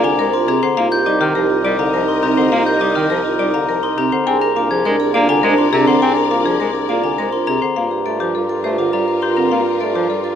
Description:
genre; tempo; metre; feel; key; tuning
classical, minimalist pattern music; 103 BPM; 3/4; straight; unclear; A4 = 440 Hz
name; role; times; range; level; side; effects
marimba with hard mallets; melody; 0.0-10.3 s; G4 to Ab5; -22 LUFS; left 8 dB; none
mellow French horn; second line; 0.0-10.4 s; D4 to F4; -22 LUFS; right 3 dB; none
clear bass clarinet; accompaniment; 0.0-10.2 s; C3 to C4; -22 LUFS; right 1 dB; none
rich studio string section; sustained chords; 0.0-10.4 s; F4 to Eb5; -27 LUFS; left 4 dB; none
glockenspiel with soft plastic mallets; arpeggios; 0.0-10.1 s; Bb5 to Ab6; -20 LUFS; left 4 dB; none
vibraphone with medium mallets; arpeggios; 0.0-10.4 s; C4 to C5; -21 LUFS; right 7 dB; none
warm bassoon; bass; 0.0-10.4 s; C2 to G2; -24 LUFS; right 1 dB; none
room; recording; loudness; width
moderate scoring stage reverb, RT60 1.6 s; none; -14 LUFS; side -8 dB against mid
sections
0.0-7.8 A section; 7.8-10.4 B section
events
none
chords
0.0 Bb7/C; 0.8 Cm9; 4.3 Bb7/C; 7.8 Gm9

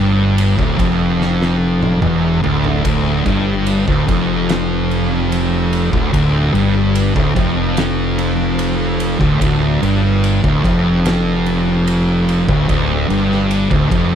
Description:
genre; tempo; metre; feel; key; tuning
stoner and doom metal; 73 BPM; 4/4; straight; D minor; A4 = 439 Hz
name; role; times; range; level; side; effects
thick fuzz guitar; riff; 0.0-14.2 s; D2 to G2; -18 LUFS; left 9 dB; distortion
thick fuzz guitar; riff; 0.0-14.2 s; D2 to G2; -17 LUFS; right 8 dB; distortion
fuzz fingered electric bass; bass; 0.0-14.2 s; D1 to G1; -20 LUFS; equal; overdrive
oversized low-tuned drum kit; drums; 0.4-14.1 s; kick drum, ride cymbal, snare drum, toms; -22 LUFS; equal; none
room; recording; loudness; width
little or no reverb; none; -13 LUFS; side -9 dB against mid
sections
0.0-14.2 A section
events
drum fill 1.2-2.8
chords
0.0 Dm

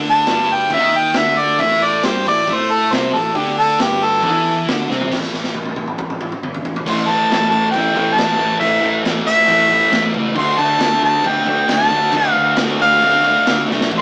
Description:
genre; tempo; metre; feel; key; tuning
garage rock duo or trio; 137 BPM; 4/4; straight; A minor; A4 = 441 Hz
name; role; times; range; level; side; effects
thick fuzz guitar; riff; 0.0-14.0 s; G2 to A4; -22 LUFS; equal; distortion
picked electric bass; bass; 0.0-14.0 s; G1 to A2; -32 LUFS; equal; none
clear harmonica; melody; 0.1-14.0 s; G4 to C6; -17 LUFS; equal; overdrive
raw garage drum kit; drums; 0.1-14.0 s; crash cymbal, hi-hat, kick drum, snare drum, toms; -24 LUFS; equal; none
room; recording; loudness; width
light reverb; rough rehearsal-room recording, warm saturation, small speaker sound; -16 LUFS; mono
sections
0.0-5.1 A section; 5.1-6.9 B section; 6.9-14.0 C section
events
harmonica solo 0.0-5.1; drum fill 4.9, 5.1-6.9, 13.7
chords
0.0 Am; 5.1 N.C.; 6.9 A5; 10.4 Dm

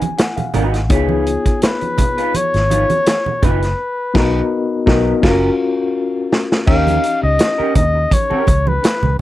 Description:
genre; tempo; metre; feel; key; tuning
lush 1970s-style soul; 83 BPM; 4/4; swing 54% on 16ths; unclear; A4 = 438 Hz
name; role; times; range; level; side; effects
mellow reed electric piano; accompaniment; 0.0-9.2 s; B3 to G#5; -20 LUFS; left 4 dB; fast tremolo
electric guitar through a small old amp; riff; 0.0-9.1 s; B3 to B4; -23 LUFS; right 4 dB; lush chorus
vintage drum kit; drums; 0.0-9.0 s; crash cymbal, hi-hat, kick drum, snare drum; -16 LUFS; equal; none
congas; percussion; 0.0-9.2 s; none; -24 LUFS; right 5 dB; none
vintage muted fingered electric bass; bass; 0.5-9.2 s; F#1 to D#2; -18 LUFS; equal; none
warm flugelhorn; melody; 0.9-9.2 s; G#4 to E#5; -18 LUFS; left 2 dB; none
room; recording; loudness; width
little or no reverb; dry, close 1970s-style studio recording; -13 LUFS; side -14 dB against mid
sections
0.0-6.7 A section; 6.7-9.2 B section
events
reed electric piano fill 0.0-0.9; band accent 3.8-6.7; drum fill 5.2-6.7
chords
0.0 G#m7; 0.9 C#9; 3.8 Bmaj7; 5.2 F#maj7; 6.7 D#7

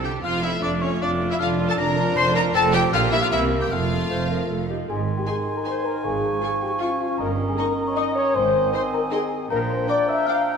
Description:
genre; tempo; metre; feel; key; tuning
cinematic, playful, whimsical film cue; 156 BPM; 3/4; straight; F major, Ab major from 4.9 s; A4 = 437 Hz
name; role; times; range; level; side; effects
rich chamber violin section; melody; 0.0-10.4 s; Db5 to D6; -28 LUFS; left 5 dB; none
small celesta; melody; 0.0-10.5 s; Eb5 to C7; -30 LUFS; left 4 dB; none
mellow hollow concert flute; second line; 0.0-10.6 s; Db5 to Db6; -31 LUFS; left 1 dB; none
rich studio violin section; second line; 0.0-10.3 s; Db4 to Ab5; -32 LUFS; left 2 dB; none
warm cor anglais; second line; 0.0-10.6 s; Db4 to Ab5; -31 LUFS; right 4 dB; none
rich studio viola section; accompaniment; 0.0-10.4 s; D3 to F4; -32 LUFS; right 3 dB; none
warm bassoon; accompaniment; 0.0-10.6 s; Eb3 to F4; -31 LUFS; right 1 dB; none
mellow French horn section; sustained chords; 0.0-10.4 s; A3 to F5; -25 LUFS; left 3 dB; none
rich chamber cello section; bass; 0.0-9.8 s; F2 to C3; -29 LUFS; right 3 dB; none
rich chamber double bass section; bass; 0.0-9.8 s; F1 to C2; -30 LUFS; right 5 dB; none
dark clarinet; second line; 4.1-10.6 s; C4 to C5; -31 LUFS; right 1 dB; none
room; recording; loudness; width
wet scoring stage reverb, RT60 2.2 s; minimal, uncompressed stereo recording; -20 LUFS; side -6 dB against mid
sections
0.0-4.9 A section; 4.9-10.6 B section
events
none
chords
0.2 F; 1.4 Bb/F; 2.6 F; 2.9 Gm/Bb; 3.3 C7; 3.7 F; 4.9 Ab; 6.0 Db/Ab; 7.2 Eb7/G; 8.4 Ab; 9.5 Bb6

